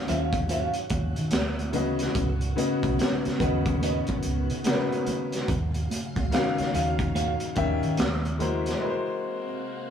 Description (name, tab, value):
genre	R&B, neo-soul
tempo	72 BPM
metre	4/4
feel	swing 62% on 16ths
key	Eb minor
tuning	A4 = 441 Hz
part	warm concert grand piano	accompaniment	0.0-9.9 s	Db3 to Gb5	-29 LUFS	left 3 dB	none
part	soft string machine	sustained chords	0.0-9.9 s	C3 to F5	-36 LUFS	equal	phaser, ensemble chorus
part	electric guitar through a small old amp	second line	0.1-7.3 s	Gb4 to F5	-31 LUFS	right 2 dB	none
part	vintage muted fingered electric bass	bass	0.1-8.7 s	Cb2 to Eb3	-30 LUFS	right 1 dB	none
part	crunchy breakbeat drum kit	drums	0.1-8.8 s	finger snaps, hi-hat, kick drum, snare drum	-29 LUFS	right 1 dB	none
part	congas	percussion	0.1-8.6 s	none	-36 LUFS	right 2 dB	none
room	moderate studio reverb, RT60 0.9 s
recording	band playing live in one room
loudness	-24 LUFS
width	side -8 dB against mid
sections	0.0-9.9 A section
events	break 8.8-9.9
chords	0.0 Ebm9; 1.3 Dadd9; 2.2 Db9sus4; 5.5 Ebm9; 8.0 Eb5; 8.8 Ab9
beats	0.49 1.32 | 2.15 2.99 3.82 4.65 | 5.49 6.32 7.15 7.99 | 8.82 9.65